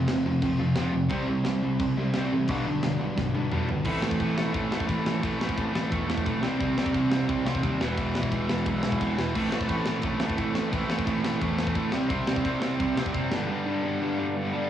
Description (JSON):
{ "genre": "punk rock", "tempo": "174 BPM", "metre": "4/4", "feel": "straight", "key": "A minor", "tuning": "A4 = 440 Hz", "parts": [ { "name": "distorted electric guitar", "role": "riff", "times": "0.0-14.7 s", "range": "E2 to C4", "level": "-28 LUFS", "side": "right 4 dB", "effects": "distortion" }, { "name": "distorted electric guitar", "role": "riff", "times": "0.0-14.7 s", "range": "G2 to F4", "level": "-31 LUFS", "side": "left 1 dB", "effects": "distortion" }, { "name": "tight distorted guitar", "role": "riff", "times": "0.0-14.7 s", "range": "E2 to C4", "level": "-34 LUFS", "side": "left 9 dB", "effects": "distortion" }, { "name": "growling picked electric bass", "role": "bass", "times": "0.0-13.5 s", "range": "E1 to E2", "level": "-34 LUFS", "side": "left 1 dB", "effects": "overdrive" }, { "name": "tight metal drum kit", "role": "drums", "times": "0.1-13.4 s", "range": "crash cymbal, kick drum, ride cymbal, snare drum, toms", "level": "-32 LUFS", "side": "left 1 dB", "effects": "cassette tape" } ], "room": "light reverb, studio ambience", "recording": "home recording on cassette", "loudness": "-24 LUFS", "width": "side -10 dB against mid", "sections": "0.0-3.9 A section; 3.9-14.7 B section", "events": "half time 0.0-3.9; drum fill 3.2-3.9", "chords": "0.0 F; 1.1 C; 2.5 G/B; 3.9 Am; 6.4 C; 7.8 E; 9.4 Am; 11.9 C; 13.3 G" }